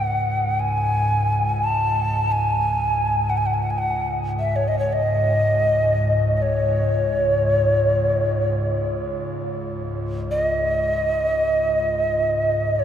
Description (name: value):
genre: world meditative, free-time meditation music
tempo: free time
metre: none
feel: none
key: unclear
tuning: A4 = 444 Hz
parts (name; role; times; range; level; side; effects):
- mellow hollow Native American-style cedar flute; melody; 0.0-12.8 s; C#5 to A5; -20 LUFS; equal; tape echo
- evolving wavetable pad; drone; 0.0-12.8 s; C#2 to G#2; -24 LUFS; equal; chorus, built-in reverb
room: wet cathedral reverb, RT60 7.5 s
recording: in a vast, echoing space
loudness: -19 LUFS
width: side -9 dB against mid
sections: 0.0-12.8 A section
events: none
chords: none